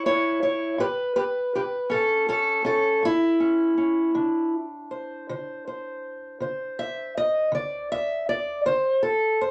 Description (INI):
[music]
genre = acoustic country blues, solo or duo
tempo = 53 BPM (dotted quarters)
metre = 12/8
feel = straight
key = unclear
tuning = A4 = 440 Hz
[part]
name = fingerpicked steel-string acoustic guitar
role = solo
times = 0.0-9.5 s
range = A2 to E5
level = -25 LUFS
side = equal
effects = none
[sound]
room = wet small room reverb, RT60 0.5 s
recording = none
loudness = -24 LUFS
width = mono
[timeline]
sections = 0.0-9.5 A section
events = steel-string acoustic guitar solo 0.0-9.5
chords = 0.0 A; 4.1 D7(no3)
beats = 0.78 1.90 3.02 | 4.14 5.27 6.39 7.51 | 8.63